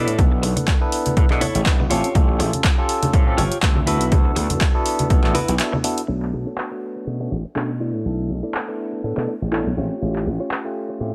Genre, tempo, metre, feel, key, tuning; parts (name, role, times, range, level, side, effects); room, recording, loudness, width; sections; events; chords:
filtered disco house; 122 BPM; 4/4; swing 55% on 16ths; A4 = 440 Hz
barky tine electric piano; accompaniment; 0.0-11.1 s; A3 to C#5; -28 LUFS; equal; phaser, sidechain pumping, low-pass filter
direct-recorded clean electric guitar; riff; 0.0-11.0 s; D4 to D5; -28 LUFS; equal; sidechain pumping, low-pass filter
gritty slap bass; bass; 0.0-11.1 s; G1 to B2; -26 LUFS; equal; overdrive, sidechain pumping, low-pass filter
punchy analog drum machine; drums; 0.1-10.6 s; handclaps, hi-hat; -28 LUFS; equal; sidechain pumping on hats, low-pass filter on hats, low-pass filter on snare
tube shaker and congas; percussion; 0.1-6.1 s; -29 LUFS; equal; sidechain pumping on perc, low-pass filter on perc
electronic kick drum; drums; 0.2-5.2 s; -20 LUFS; equal
digital ambience; -20 LUFS; mono
0.0-6.1 A section; 6.1-11.1 B section
filter sweep 0.0-6.1; break 5.6-6.1; clean electric guitar fill 9.3-10.0
0.0 E7sus4/B; 1.9 A7alt; 3.9 D69; 7.8 E7sus4/B; 9.8 A7alt